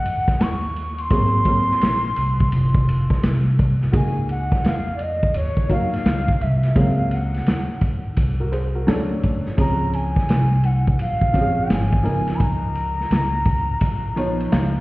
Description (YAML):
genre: hip hop, jazz-hop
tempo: 85 BPM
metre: 4/4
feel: swing 66% on 16ths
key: Db major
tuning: A4 = 438 Hz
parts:
  - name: bansuri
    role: melody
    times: 0.0-14.8 s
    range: Db5 to Db6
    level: -25 LUFS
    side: equal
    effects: none
  - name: upright bass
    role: bass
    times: 0.0-14.8 s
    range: F1 to F2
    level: -22 LUFS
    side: equal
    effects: none
  - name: vintage drum kit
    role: drums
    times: 0.1-14.7 s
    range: hi-hat, kick drum, ride cymbal, snare drum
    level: -22 LUFS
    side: equal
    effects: none
  - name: dark upright piano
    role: accompaniment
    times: 1.1-14.8 s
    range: F3 to F5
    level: -25 LUFS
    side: equal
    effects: none
room: light reverb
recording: heard muffled through a wall, stone room reverb, vinyl crackle, EQ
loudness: -17 LUFS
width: side -20 dB against mid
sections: 0.0-3.9 A section; 3.9-14.8 B section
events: upright piano fill 14.2-14.8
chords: 0.0 Ebm9; 1.1 Ab9; 3.9 Gb69/Db; 6.8 Ab9/Db; 8.9 Dmaj7; 9.6 Dbmaj7; 12.1 Db13